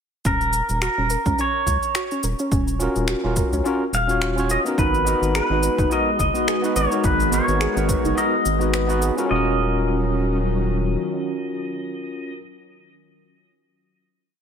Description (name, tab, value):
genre	sunset chillout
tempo	106 BPM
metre	4/4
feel	swing 56% on 16ths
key	Eb minor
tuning	A4 = 440 Hz
part	pedal steel guitar	melody	0.3-12.3 s	Bb4 to F5	-24 LUFS	equal	tape echo
part	soft round pluck	arpeggios	0.3-9.6 s	Db4 to Eb5	-29 LUFS	right 3 dB	analog chorus, tape echo
part	round analog bass	bass	0.3-11.0 s	Eb1 to Db2	-24 LUFS	equal	none
part	electronic cabasa and finger snaps	drums	0.3-9.3 s	none	-29 LUFS	left 1 dB	overdrive, small room ambience
part	electronic kick drum	drums	0.3-8.0 s	none	-25 LUFS	equal	overdrive, small room ambience
part	overdriven tine electric piano	accompaniment	2.8-12.4 s	Cb4 to Db5	-24 LUFS	left 1 dB	auto-pan, tape echo
part	soft string machine	sustained chords	5.4-12.3 s	Eb3 to Gb4	-27 LUFS	equal	ensemble chorus
room	light reverb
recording	none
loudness	-19 LUFS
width	side -7 dB against mid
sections	0.3-9.3 groove; 9.3-11.6 final chord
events	none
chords	0.3 Ebm7; 4.8 Abm7; 9.3 Ebm7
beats	| 0.25 0.82 1.39 1.95 | 2.52 3.08 3.65 4.21 | 4.78 5.35 5.91 6.48 | 7.04 7.61 8.18 8.74 | 9.31 9.88 10.44 11.01